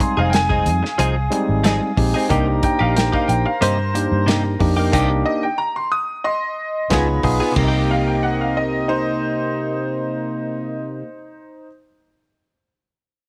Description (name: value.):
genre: straight-eighth soul blues.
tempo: 91 BPM.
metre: 4/4.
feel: straight.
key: C minor.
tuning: A4 = 442 Hz.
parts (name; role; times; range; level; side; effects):
clear upright piano; second line; 0.0-11.7 s; Eb4 to Eb6; -26 LUFS; equal; none.
barky tine electric piano; accompaniment; 0.0-11.0 s; G3 to Ab4; -24 LUFS; equal; none.
mellow horn section; sustained chords; 0.0-11.0 s; Eb4 to Cb6; -30 LUFS; equal; none.
direct-recorded clean electric guitar; stabs; 0.0-11.2 s; C3 to Ab4; -27 LUFS; equal; analog chorus.
warm soul drum kit; drums; 0.0-7.7 s; crash cymbal, hi-hat, kick drum, snare drum; -25 LUFS; equal; none.
vintage muted fingered electric bass; bass; 0.2-11.0 s; F1 to G2; -23 LUFS; equal; none.
room: light reverb.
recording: none.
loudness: -19 LUFS.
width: mono.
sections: 0.0-7.6 A section; 7.6-10.2 B section.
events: upright piano solo 0.0-7.6.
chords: 0.0 Fm7; 2.3 Cm7; 6.9 Db7; 7.6 Cm7.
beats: 0.33 0.99 1.64 | 2.30 2.96 3.62 4.28 | 4.93 5.59 6.25 6.91 | 7.57 8.23 8.88 9.54.